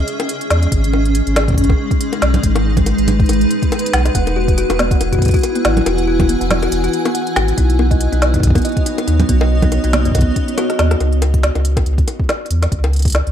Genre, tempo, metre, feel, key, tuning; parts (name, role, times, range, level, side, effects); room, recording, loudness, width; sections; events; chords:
IDM; 140 BPM; 4/4; swing 56% on 16ths; A4 = 440 Hz
granular cloud pad; sustained chords; 0.0-11.0 s; G#3 to G#5; -20 LUFS; equal; built-in reverb
warm sub bass; bass; 0.0-13.3 s; E1 to E2; -16 LUFS; equal; tube saturation
organic electronic drum kit; drums; 0.1-13.3 s; bongos, congas, hi-hat, rim click, snare drum; -20 LUFS; equal; tape echo
electronic kick drum; drums; 0.7-13.1 s; -16 LUFS; equal
kalimba; arpeggios; 4.1-11.0 s; B3 to F#5; -20 LUFS; left 2 dB; tape echo
light reverb; dark, warm production; -13 LUFS; side -9 dB against mid
0.0-11.0 A section; 11.0-13.3 B section
drum fill 10.6-11.0
0.0 C#m; 0.7 G#m; 4.1 Eadd9; 7.6 Badd9; 11.0 N.C.